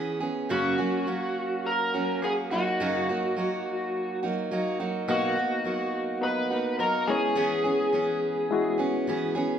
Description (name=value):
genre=acoustic pop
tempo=105 BPM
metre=4/4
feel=straight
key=B major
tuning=A4 = 440 Hz
part: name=picked steel-string acoustic guitar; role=accompaniment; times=0.0-9.6 s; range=F#2 to G#4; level=-28 LUFS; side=right 2 dB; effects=none
part: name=overdriven slide guitar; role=melody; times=0.5-8.8 s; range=F#4 to B4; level=-28 LUFS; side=left 1 dB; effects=none
part: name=barky reed electric piano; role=accompaniment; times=5.1-9.6 s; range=G#3 to A#5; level=-30 LUFS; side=left 4 dB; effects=overdrive, fast tremolo
room=wet recital hall reverb, RT60 1.4 s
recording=recorded in a church or concert hall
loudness=-25 LUFS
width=side -8 dB against mid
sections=0.0-9.6 A section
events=none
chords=0.0 E6; 0.5 F#; 2.5 D#m/F#; 5.1 Bmaj7; 7.1 E6